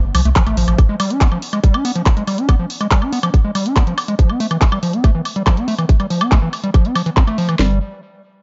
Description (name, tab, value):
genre	psychedelic trance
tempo	141 BPM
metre	4/4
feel	straight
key	unclear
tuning	A4 = 440 Hz
part	round analog bass	bass	0.0-0.7, 7.6-7.8 s	G1 to C2	-18 LUFS	equal	none
part	overdriven acid bass	riff	0.1-7.8 s	E3 to D4	-22 LUFS	equal	distortion, sidechain pumping, delay
part	drum and bass drum kit	drums	0.1-7.6 s	handclaps, hi-hat, woodblock	-24 LUFS	equal	low-pass filter on hats, low-pass filter on perc, low-pass filter on snare
part	drum and bass drum kit	drums	0.4-7.7 s	kick drum, snare drum	-15 LUFS	equal	none
room	digital ambience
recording	nothing above 7.6 kHz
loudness	-16 LUFS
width	mono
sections	0.0-7.6 A section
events	none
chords	0.0 F5; 0.8 G5; 4.2 F5; 7.6 N.C.